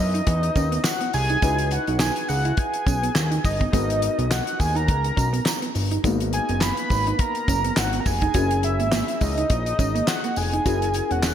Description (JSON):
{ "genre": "early-eighties boogie funk", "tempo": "104 BPM", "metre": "4/4", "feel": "swing 56% on 16ths", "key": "G# minor", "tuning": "A4 = 441 Hz", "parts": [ { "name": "fat analog lead", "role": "melody", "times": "0.0-11.3 s", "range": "D#5 to B5", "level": "-25 LUFS", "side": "equal", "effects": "chorus" }, { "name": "dark grand piano", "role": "accompaniment", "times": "0.0-11.3 s", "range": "A#3 to B4", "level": "-30 LUFS", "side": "left 3 dB", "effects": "wide subtle chorus" }, { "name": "fat analog bass", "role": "bass", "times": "0.0-11.3 s", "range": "E1 to F#2", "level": "-25 LUFS", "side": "equal", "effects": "none" }, { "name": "mellow electric guitar", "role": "riff", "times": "0.1-11.3 s", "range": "G#3 to F#4", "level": "-30 LUFS", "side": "right 5 dB", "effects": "wide subtle chorus" }, { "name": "damped 70s drum kit", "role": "drums", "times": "0.1-11.3 s", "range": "handclaps, hi-hat, kick drum, snare drum", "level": "-25 LUFS", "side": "equal", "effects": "gated reverb" }, { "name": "tambourine", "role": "percussion", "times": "0.6-11.3 s", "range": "none", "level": "-35 LUFS", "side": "right 7 dB", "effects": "none" } ], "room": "moderate lush hall reverb, RT60 2.4 s", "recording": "bright 1980s-style digital production", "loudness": "-20 LUFS", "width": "side -9 dB against mid", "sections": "0.0-11.3 A section", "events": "none", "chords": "0.0 C#m11; 3.7 G#m9; 8.4 F#9" }